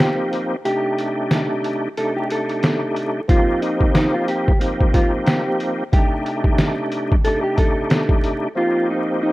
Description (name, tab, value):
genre	hip hop, boom-bap hip-hop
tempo	91 BPM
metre	4/4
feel	swing 57% on 16ths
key	C dorian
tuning	A4 = 440 Hz
part	mellow electric guitar	melody	0.0-9.3 s	Eb4 to A4	-23 LUFS	equal	high-pass filter, low-pass filter, ping-pong delay
part	bright tonewheel organ	accompaniment	0.0-9.3 s	C3 to G4	-21 LUFS	equal	chorus vibrato, fast rotary speaker, high-pass filter, low-pass filter
part	trip hop sampler-style drum kit	drums	0.0-8.4 s	hi-hat, kick drum, snare drum	-18 LUFS	equal	none
room	digital ambience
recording	rough home demo mix, vinyl crackle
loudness	-17 LUFS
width	side -18 dB against mid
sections	0.0-9.3 A section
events	kick muted 0.7-3.3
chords	0.0 F9sus4; 0.7 Cm69; 3.3 F9sus4; 5.9 Cm69; 8.6 F9sus4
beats	0.00 | 0.66 1.31 1.97 2.63 | 3.29 3.95 4.61 5.27 | 5.93 6.59 7.25 7.91 | 8.57 9.23